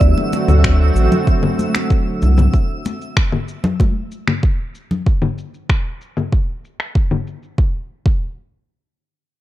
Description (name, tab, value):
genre	sunset chillout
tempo	95 BPM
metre	4/4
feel	straight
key	unclear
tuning	A4 = 439 Hz
part	lush unison pad	sustained chords	0.0-2.5 s	D3 to F#4	-20 LUFS	right 1 dB	chorus
part	round analog bass	bass	0.0-2.5 s	A1 to D2	-12 LUFS	equal	none
part	electronic kick drum	drums	0.0-8.2 s	none	-16 LUFS	equal	overdrive, studio reverb
part	electronic shaker, congas and finger snaps	drums	0.0-7.6 s	none	-20 LUFS	left 3 dB	overdrive, low-pass filter on perc, studio reverb, low-pass filter on snare
part	twinkling granular texture	texture	0.0-2.5 s	E5 to E6	-28 LUFS	right 3 dB	built-in reverb
part	congas	percussion	0.2-5.0 s	none	-22 LUFS	left 2 dB	none
room	digital ambience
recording	dark, warm production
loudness	-15 LUFS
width	side -14 dB against mid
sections	0.0-7.6 A section; 7.6-9.4 B section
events	none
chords	0.0 D7; 2.5 N.C.